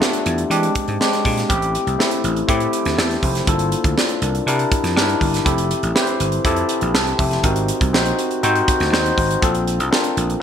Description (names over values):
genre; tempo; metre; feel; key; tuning
polished 1980s jazz-funk pop; 121 BPM; 4/4; straight; F major; A4 = 440 Hz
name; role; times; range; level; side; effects
overdriven tine electric piano; accompaniment; 0.0-10.4 s; G#3 to A5; -19 LUFS; left 2 dB; wide subtle chorus
tight funk drum kit; drums; 0.0-10.4 s; hi-hat, kick drum, snare drum; -21 LUFS; right 1 dB; gated reverb
vintage slap bass; bass; 0.3-10.3 s; F1 to E3; -22 LUFS; right 1 dB; none
room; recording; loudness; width
moderate plate reverb, RT60 1.2 s; bright 1980s-style digital production; -16 LUFS; side -8 dB against mid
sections
0.0-10.4 A section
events
none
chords
0.0 Bm7b5; 0.5 E7alt; 1.5 Am7; 3.5 Gm9; 4.5 C7; 5.5 Fmaj9; 7.4 Ab9; 9.4 Bbmaj7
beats
0.01 0.51 1.00 | 1.50 1.99 2.49 2.98 | 3.48 3.97 4.47 4.96 | 5.46 5.96 6.45 6.95 | 7.44 7.94 8.43 8.93 | 9.43 9.92 10.42